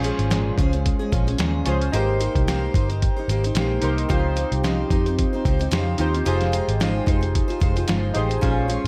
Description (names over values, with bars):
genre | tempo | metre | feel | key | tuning
indie pop, bedroom pop | 111 BPM | 4/4 | swing 55% on 16ths | F minor | A4 = 443 Hz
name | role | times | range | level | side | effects
chorused retro synth keys | accompaniment | 0.0-8.9 s | Db4 to C5 | -29 LUFS | equal | cassette tape
picked steel-string acoustic guitar | accompaniment | 0.0-8.9 s | Bb2 to Db5 | -29 LUFS | equal | subtle chorus, warbly pitch drift
vintage muted picked electric bass | bass | 0.0-8.9 s | F1 to F2 | -26 LUFS | equal | none
lo-fi sampler-style drum kit | drums | 0.0-8.9 s | hi-hat, kick drum, snare drum | -26 LUFS | equal | none
room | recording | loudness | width
digital ambience | none | -22 LUFS | mono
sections
0.0-8.9 A section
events
none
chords
0.0 Bbm7; 1.9 Abmaj9; 4.1 Dbmaj9#11; 6.3 Fm7